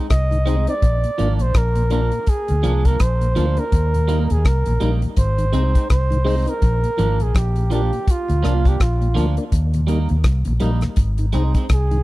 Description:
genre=roots reggae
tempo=83 BPM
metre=4/4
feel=swing 59% on 16ths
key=Bb mixolydian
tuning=A4 = 438 Hz
part: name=clean electric guitar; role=accompaniment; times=0.0-11.7 s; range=F3 to Eb4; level=-28 LUFS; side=right 5 dB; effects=analog chorus, dub echo
part: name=warm flugelhorn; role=melody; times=0.1-12.0 s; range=F4 to Eb5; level=-24 LUFS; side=right 2 dB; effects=dub echo
part: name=vintage muted fingered electric bass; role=bass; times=0.1-12.0 s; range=Ab1 to Eb2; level=-18 LUFS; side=equal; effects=none
part: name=damped 70s drum kit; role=drums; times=0.1-12.0 s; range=hi-hat, kick drum, rim click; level=-18 LUFS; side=equal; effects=none
part: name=mellow tonewheel organ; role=accompaniment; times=0.3-12.0 s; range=Eb2 to Eb4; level=-28 LUFS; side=left 2 dB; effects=slow rotary speaker, dub echo
room=little or no reverb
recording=dry, close 1970s-style studio recording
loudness=-16 LUFS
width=side -18 dB against mid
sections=0.0-12.0 A section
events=none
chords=0.0 Ab; 0.8 Bb; 3.7 Eb; 5.2 Ab; 6.6 Bb; 9.5 Eb; 11.0 Ab

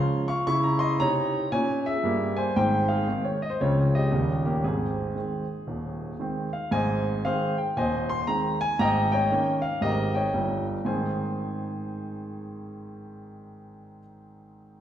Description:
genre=jazz, stride piano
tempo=116 BPM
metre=4/4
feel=swing 64% on 8ths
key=Ab major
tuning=A4 = 441 Hz
part: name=warm grand piano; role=solo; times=0.0-14.8 s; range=Eb1 to Db6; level=-24 LUFS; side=equal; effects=none
room=wet recital hall reverb, RT60 1.7 s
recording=recorded in a church or concert hall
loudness=-24 LUFS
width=side -10 dB against mid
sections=0.0-6.7 A section; 6.7-10.9 B section; 10.9-14.8 C section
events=none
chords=0.5 Dbm; 2.6 Ab; 3.6 Dbmaj7; 4.1 Eb7; 4.6 Ab; 8.8 Eb7/Ab; 10.9 Ab

